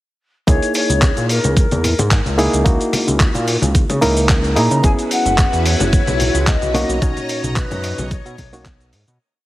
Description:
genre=nu-disco, nu disco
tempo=110 BPM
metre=4/4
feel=swing 54% on 16ths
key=C# dorian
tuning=A4 = 440 Hz
part: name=mellow hollow silver concert flute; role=melody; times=0.5-8.9 s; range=A#4 to A#5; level=-22 LUFS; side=left 2 dB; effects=analog delay
part: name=barky reed electric piano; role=accompaniment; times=0.5-8.6 s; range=A#2 to A#4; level=-21 LUFS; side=equal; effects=overdrive, analog delay
part: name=chorused synth bass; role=bass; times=0.5-9.2 s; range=F#1 to C#3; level=-19 LUFS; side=equal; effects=none
part: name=dusty soul sampler-style drum kit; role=drums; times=0.5-9.2 s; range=handclaps, hi-hat, shaker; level=-22 LUFS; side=equal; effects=none
part: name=electronic kick drum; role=drums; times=0.5-8.8 s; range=none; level=-15 LUFS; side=equal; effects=none
part: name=congas and cabasa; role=percussion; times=0.5-9.2 s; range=none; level=-25 LUFS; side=left 2 dB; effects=none
part: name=string machine, full ensemble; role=sustained chords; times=4.8-9.2 s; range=E4 to A#5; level=-25 LUFS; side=left 1 dB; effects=ensemble chorus, sidechain pumping
room=light reverb, digital ambience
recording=heavily compressed radio sound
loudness=-14 LUFS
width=side -16 dB against mid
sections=0.5-9.2 drop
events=drop 0.5-9.2; fade-out 6.3-9.2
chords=0.5 C#m69; 4.8 F#9sus4; 6.7 Bmaj9

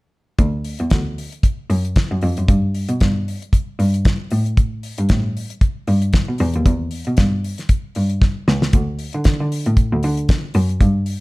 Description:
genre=disco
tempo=115 BPM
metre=4/4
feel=swing 56% on 16ths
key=E minor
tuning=A4 = 440 Hz
part: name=muted cello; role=bass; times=0.4-11.0 s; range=C#2 to D3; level=-19 LUFS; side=equal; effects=none
part: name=damped 70s drum kit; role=drums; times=0.4-11.2 s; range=hi-hat, kick drum, snare drum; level=-17 LUFS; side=equal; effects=none
room=little or no reverb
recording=none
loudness=-16 LUFS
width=side -22 dB against mid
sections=0.4-8.7 A section; 8.7-11.2 B section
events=drum fill 8.2-8.7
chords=none

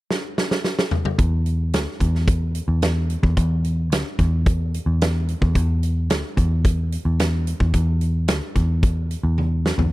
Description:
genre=classic rock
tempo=110 BPM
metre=4/4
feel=straight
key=unclear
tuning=A4 = 438 Hz
part: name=huge arena drum kit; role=drums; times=0.1-9.9 s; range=hi-hat, kick drum, snare drum, toms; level=-22 LUFS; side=equal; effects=none
part: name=picked electric bass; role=bass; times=1.2-9.9 s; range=D2 to E2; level=-20 LUFS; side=equal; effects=none
room=little or no reverb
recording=dry, close 1970s-style studio recording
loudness=-18 LUFS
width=side -18 dB against mid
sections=0.0-1.2 A section; 1.2-9.9 B section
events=drum fill 0.1-1.2, 9.4-9.9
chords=none

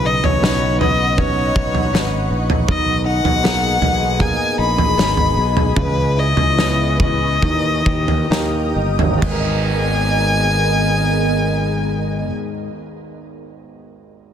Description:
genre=pop ballad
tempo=65-80 BPM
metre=4/4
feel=straight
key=G# minor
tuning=A4 = 440 Hz
part: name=warm violin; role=melody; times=0.0-12.3 s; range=B4 to B5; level=-20 LUFS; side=left 2 dB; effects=none
part: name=warm grand piano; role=accompaniment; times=0.0-14.3 s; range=G#1 to D#5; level=-25 LUFS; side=right 5 dB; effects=none
part: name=ethereal airy pad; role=sustained chords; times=0.0-12.3 s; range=B3 to D#6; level=-25 LUFS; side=equal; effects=ensemble chorus, built-in reverb
part: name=direct-recorded clean electric guitar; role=arpeggios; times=0.0-12.8 s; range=G#2 to B4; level=-27 LUFS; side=left 8 dB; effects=digital delay
part: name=sustaining fretless electric bass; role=bass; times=0.0-12.3 s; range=G1 to D#2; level=-20 LUFS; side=equal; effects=none
part: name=loose indie drum kit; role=drums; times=0.2-9.4 s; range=crash cymbal, kick drum, snare drum, toms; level=-20 LUFS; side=right 1 dB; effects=none
room=small room ambience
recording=dense, heavily limited modern master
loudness=-15 LUFS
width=side -9 dB against mid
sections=0.0-9.2 A section; 9.2-12.9 B section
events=slowing down 2.7-9.2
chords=0.0 Badd9; 2.7 G#madd9/B; 5.8 C#m7; 7.4 D#; 9.2 G#madd9

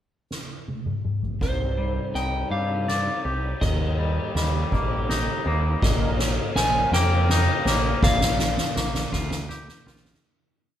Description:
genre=post-rock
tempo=54 BPM (dotted quarters)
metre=6/8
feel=straight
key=C minor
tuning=A4 = 440 Hz
part: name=soft-mallet drum kit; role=drums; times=0.3-10.3 s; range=kick drum, ride cymbal, snare drum, toms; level=-25 LUFS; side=equal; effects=none
part: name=electric slide guitar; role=melody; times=1.4-9.5 s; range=C5 to Ab5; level=-28 LUFS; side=left 1 dB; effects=none
part: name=brassy analog pad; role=sustained chords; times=1.4-10.2 s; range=C3 to F5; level=-36 LUFS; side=right 2 dB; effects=chorus
part: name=twangy electric guitar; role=arpeggios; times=1.4-10.2 s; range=Bb2 to D5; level=-30 LUFS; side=left 2 dB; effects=none
part: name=growling picked electric bass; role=bass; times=1.4-10.1 s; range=Bb1 to G2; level=-25 LUFS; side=equal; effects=overdrive
room=light reverb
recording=band playing live in one room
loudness=-21 LUFS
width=side -10 dB against mid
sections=0.0-1.4 pickup bar; 1.4-10.2 build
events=drum fill 0.3-1.4, 1.4-10.2; build-up 1.4-10.2; fade-out 8.0-10.2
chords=0.0 N.C.; 1.4 Cmadd9; 3.6 Eb; 5.8 Bbsus4; 8.0 Gm7/Bb

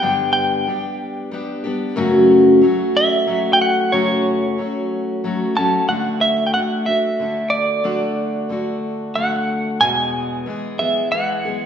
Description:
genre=folk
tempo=92 BPM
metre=3/4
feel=straight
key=D major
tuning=A4 = 441 Hz
part: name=clean electric guitar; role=melody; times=0.0-11.7 s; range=C#5 to A5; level=-18 LUFS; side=right 1 dB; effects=tremolo
part: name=picked steel-string acoustic guitar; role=accompaniment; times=0.0-11.7 s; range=E2 to G#4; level=-18 LUFS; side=left 1 dB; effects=none
room=wet recital hall reverb, RT60 1.5 s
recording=minimal, uncompressed stereo recording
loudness=-16 LUFS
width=side -8 dB against mid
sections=0.0-5.9 A section; 5.9-11.7 B section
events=none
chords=0.0 G; 2.0 F#m; 5.9 D; 9.8 E

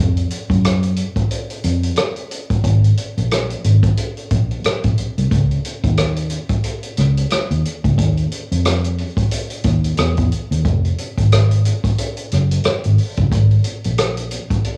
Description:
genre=lush 1970s-style soul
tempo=90 BPM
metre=4/4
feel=swing 58% on 16ths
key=unclear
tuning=A4 = 442 Hz
part: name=vintage muted fingered electric bass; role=bass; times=0.0-14.4 s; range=F1 to Gb2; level=-18 LUFS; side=equal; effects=none
part: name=vintage drum kit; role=drums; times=0.2-14.8 s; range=hi-hat, kick drum, rim click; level=-22 LUFS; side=equal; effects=cassette tape
room=little or no reverb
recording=home recording on cassette, small room ambience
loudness=-18 LUFS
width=mono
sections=0.0-14.8 A section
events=none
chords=none

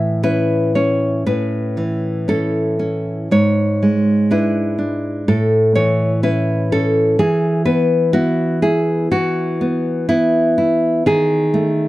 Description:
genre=romantic piece for solo classical guitar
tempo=57-65 BPM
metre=4/4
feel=rubato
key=A major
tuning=A4 = 441 Hz
part: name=nylon-string guitar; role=solo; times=0.0-11.9 s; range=G#2 to E5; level=-14 LUFS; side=equal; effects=none
room=small room ambience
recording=dry, close 1970s-style studio recording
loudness=-14 LUFS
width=side -17 dB against mid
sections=0.0-11.9 A section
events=none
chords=0.0 A; 3.3 E7/G#; 5.3 A; 7.2 E5; 11.1 B7/D# (rootless)

